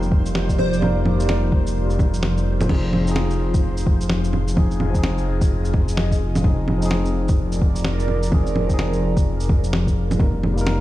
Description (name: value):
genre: future garage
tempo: 128 BPM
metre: 4/4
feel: swing 61% on 16ths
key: F dorian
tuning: A4 = 442 Hz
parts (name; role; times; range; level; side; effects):
- tine electric piano; accompaniment; 0.0-10.8 s; F3 to Bb4; -26 LUFS; left 2 dB; vintage 12-bit sampler grit, sidechain pumping, analog delay
- airy breathy pad; sustained chords; 0.0-10.8 s; F3 to Eb5; -28 LUFS; right 2 dB; chorus, phaser, sidechain pumping
- dark detuned saw bass; bass; 0.0-10.8 s; F1; -22 LUFS; equal; sidechain pumping
- lo-fi sampler-style drum kit; drums; 0.0-10.8 s; bongos, crash cymbal, shaker, snare drum; -25 LUFS; right 1 dB; none
- backwards swelling texture; texture; 0.0-2.7 s; C5; -38 LUFS; left 3 dB; built-in reverb
- electronic kick drum; drums; 0.1-10.3 s; none; -19 LUFS; equal; none
- plucky unison lead; melody; 0.6-0.8 s; C5; -30 LUFS; left 4 dB; phaser, lush chorus, tape echo
room: digital ambience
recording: played on a big sound system in a bare room, stone room reverb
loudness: -17 LUFS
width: side -15 dB against mid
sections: 0.0-2.7 A section; 2.7-10.8 A section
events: kick drops out 2.2-2.7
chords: 0.0 Eb/F; 2.7 Fm7; 10.2 Eb/F